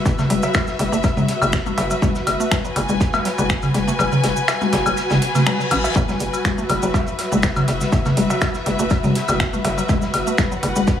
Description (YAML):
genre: minimal techno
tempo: 122 BPM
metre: 4/4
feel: swing 53% on 16ths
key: F# minor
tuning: A4 = 439 Hz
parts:
  - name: rich symphonic string section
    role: texture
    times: 0.0-11.0 s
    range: F#4 to G#5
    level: -24 LUFS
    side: left 2 dB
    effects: sidechain pumping
  - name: hollow knocking FM bass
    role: bass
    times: 0.1-10.8 s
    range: F#1 to A1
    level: -24 LUFS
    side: equal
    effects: sidechain pumping
  - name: crunchy breakbeat drum kit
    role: drums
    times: 0.1-11.0 s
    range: hi-hat, snare drum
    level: -32 LUFS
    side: equal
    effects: high-pass filter on hats, studio reverb, high-pass filter on snare, high-pass filter on room, tape echo
  - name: electronic kick drum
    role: drums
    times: 0.1-11.0 s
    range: none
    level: -21 LUFS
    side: equal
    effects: studio reverb
  - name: cabasa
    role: percussion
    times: 0.1-11.0 s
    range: none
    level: -34 LUFS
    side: right 3 dB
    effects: tape echo
  - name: mallet-like synth pluck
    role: riff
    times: 0.2-10.6 s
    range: F#3 to A3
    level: -28 LUFS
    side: equal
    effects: chorus, sidechain pumping, dub echo
  - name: electronic toms, woodblock and cowbell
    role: percussion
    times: 0.2-10.9 s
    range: none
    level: -21 LUFS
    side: left 1 dB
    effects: studio reverb, analog delay
  - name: house drum kit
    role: drums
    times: 0.3-10.7 s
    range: finger snaps, hi-hat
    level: -26 LUFS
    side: right 1 dB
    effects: studio reverb, tape echo
  - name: reverse cymbal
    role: sound effects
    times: 5.2-6.0 s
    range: none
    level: -29 LUFS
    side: left 5 dB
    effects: none
room: light reverb, small room ambience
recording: echo-heavy mix, small room reverb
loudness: -17 LUFS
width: side -9 dB against mid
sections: 0.0-11.0 A section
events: kick drops out 4.0-6.0; reverse cymbal 5.2-6.0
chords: 0.0 F#7(no3)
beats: | 0.06 0.55 1.04 1.53 | 2.02 2.52 3.01 3.50 | 3.99 4.48 4.97 5.47 | 5.96 6.45 6.94 7.43 | 7.92 8.42 8.91 9.40 | 9.89 10.38 10.88